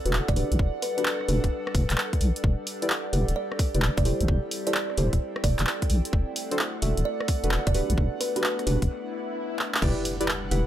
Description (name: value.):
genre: UK garage, two-step garage.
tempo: 130 BPM.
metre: 4/4.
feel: swing 67% on 16ths.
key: unclear.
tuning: A4 = 440 Hz.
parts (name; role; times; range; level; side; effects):
airy breathy pad; sustained chords; 0.0-10.7 s; G3 to F#5; -38 LUFS; left 1 dB; chorus, sidechain pumping.
warbly tape-like pad; texture; 0.0-8.9 s; A4 to G5; -38 LUFS; right 1 dB; chorus, built-in reverb, phaser, sidechain pumping.
deep mellow chord stab; stabs; 0.1-10.6 s; D4 to F#5; -31 LUFS; equal; chorus, cassette tape, dub echo.
deep soft wobble bass; bass; 0.1-10.6 s; D1 to B1; -25 LUFS; equal; chorus.
punchy analog drum machine; drums; 0.1-10.6 s; crash cymbal, handclaps, hi-hat, rim click; -29 LUFS; equal; none.
kalimba; melody; 0.3-8.4 s; B4 to D5; -33 LUFS; right 2 dB; none.
electronic kick drum; drums; 0.3-9.9 s; none; -25 LUFS; equal; overdrive.
swell and impact; sound effects; 9.0-10.7 s; none; -35 LUFS; left 1 dB; none.
room: light reverb, digital ambience.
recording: none.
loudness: -23 LUFS.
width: side -12 dB against mid.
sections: 0.0-9.8 A section.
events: filter sweep on synth stab 0.0-9.8; break 8.9-9.8; swell 9.0-9.8; drum fill 9.6; impact 9.8-10.7.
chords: 0.0 D7; 0.6 Gmaj7; 4.1 Am7/E; 6.1 D7; 8.0 Gmaj7; 9.8 Em7.